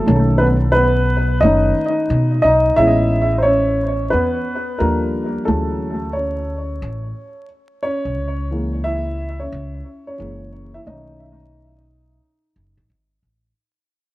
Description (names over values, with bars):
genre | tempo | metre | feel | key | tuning
hip hop, jazz-hop | 89 BPM | 4/4 | swing 64% on 16ths | unclear | A4 = 443 Hz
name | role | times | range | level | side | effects
dark baby grand piano | accompaniment | 0.0-12.9 s | D#3 to E5 | -17 LUFS | equal | tape echo
upright bass | bass | 0.1-13.5 s | F#1 to B2 | -20 LUFS | equal | none
room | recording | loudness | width
moderate spring reverb, RT60 1.9 s, studio reverb | echo-heavy mix, vinyl crackle | -15 LUFS | side -17 dB against mid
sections
0.0-2.8 A section; 2.8-13.6 B section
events
grand piano solo 0.0-2.8, 2.8-13.6; fade-out 2.8-13.6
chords
0.1 B7; 2.8 Amaj9; 4.8 D#maj9#11; 5.5 Dmaj9#11; 8.2 C#m6; 10.2 F#9; 10.9 B7